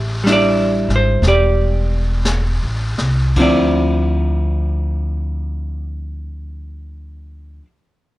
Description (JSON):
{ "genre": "jazz ballad", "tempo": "52-65 BPM", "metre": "4/4", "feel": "swing 66% on 8ths", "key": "D minor", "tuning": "A4 = 441 Hz", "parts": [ { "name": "vintage hollow-body jazz guitar", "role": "accompaniment", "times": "0.0-7.7 s", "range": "D3 to E5", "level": "-17 LUFS", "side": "equal", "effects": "none" }, { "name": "upright bass", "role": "bass", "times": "0.0-7.6 s", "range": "E1 to D2", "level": "-18 LUFS", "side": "equal", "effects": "none" }, { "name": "jazz brush drum kit", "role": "drums", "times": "0.3-4.3 s", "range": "brushed snare drum, crash cymbal, hi-hat, kick drum, snare drum", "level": "-25 LUFS", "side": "left 1 dB", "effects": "none" } ], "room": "light reverb", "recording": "worn, warbling old tape, cassette tape, warbly pitch drift", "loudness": "-14 LUFS", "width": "side -17 dB against mid", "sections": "0.0-3.4 A section; 3.4-8.0 B section", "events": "slowing down 0.0-3.4", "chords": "0.0 A7sus4; 3.4 Dm9" }